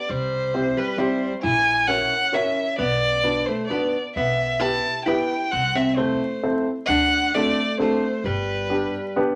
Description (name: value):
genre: musette waltz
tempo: 132 BPM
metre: 3/4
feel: straight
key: G major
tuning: A4 = 441 Hz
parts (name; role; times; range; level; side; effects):
- dark violin; melody; 0.0-9.2 s; B4 to A5; -25 LUFS; equal; none
- archtop guitar, miked and amplified; second line; 0.0-9.2 s; G3 to E4; -30 LUFS; equal; none
- upright bass; bass; 0.1-8.8 s; G1 to D2; -33 LUFS; equal; none
- warm upright piano; accompaniment; 0.5-9.4 s; B3 to C5; -26 LUFS; equal; none
room: wet studio reverb, RT60 0.6 s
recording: vinyl crackle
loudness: -22 LUFS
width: mono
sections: 0.0-9.4 A section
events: none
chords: 0.1 C; 1.4 F#7/A#; 2.8 Bm; 4.2 Em/B; 5.5 Am/C; 6.9 D7; 8.2 G